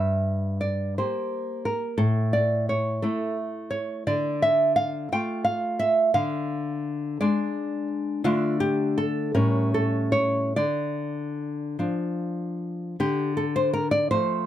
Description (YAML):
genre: romantic piece for solo classical guitar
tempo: 47-60 BPM (dotted quarters)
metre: 6/8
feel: rubato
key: D minor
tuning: A4 = 440 Hz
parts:
  - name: nylon-string guitar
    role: solo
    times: 0.0-14.5 s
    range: G2 to G5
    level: -23 LUFS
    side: equal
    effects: none
room: moderate studio ambience, RT60 0.5 s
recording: none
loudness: -23 LUFS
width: side -11 dB against mid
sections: 0.0-13.0 A section; 13.0-14.5 B section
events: none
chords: 0.0 Edim/G; 2.0 A5; 4.1 Dm; 6.1 Ddim; 8.3 D5; 9.4 A7; 10.6 Dm